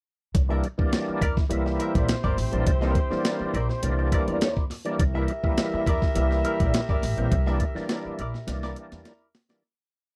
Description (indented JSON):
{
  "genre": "funk",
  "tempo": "103 BPM",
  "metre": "4/4",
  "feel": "straight",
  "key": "C mixolydian",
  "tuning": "A4 = 440 Hz",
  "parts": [
    { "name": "vintage hollow-body jazz guitar", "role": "accompaniment", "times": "0.3-9.7 s", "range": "E4 to E5", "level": "-36 LUFS", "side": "equal", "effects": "wah" },
    { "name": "upright bass", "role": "bass", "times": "0.3-9.0 s", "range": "G1 to E2", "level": "-30 LUFS", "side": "equal", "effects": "none" },
    { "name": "breakbeat sampler-style drum kit", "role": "drums", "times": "0.3-9.6 s", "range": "hi-hat, kick drum, snare drum", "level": "-28 LUFS", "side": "equal", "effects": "none" },
    { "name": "overdriven tonewheel organ", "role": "stabs", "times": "0.5-9.6 s", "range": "E3 to E4", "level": "-31 LUFS", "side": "equal", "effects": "chorus vibrato, slow rotary speaker" },
    { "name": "warm horn section", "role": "second line", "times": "1.5-9.3 s", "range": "C4 to E5", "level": "-34 LUFS", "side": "equal", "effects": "none" }
  ],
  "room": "little or no reverb",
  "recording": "dry, close 1970s-style studio recording",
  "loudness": "-25 LUFS",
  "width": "mono",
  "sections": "0.3-9.6 groove",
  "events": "fade-out 7.3-9.6; drum fill 8.5-9.6",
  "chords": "0.3 C9"
}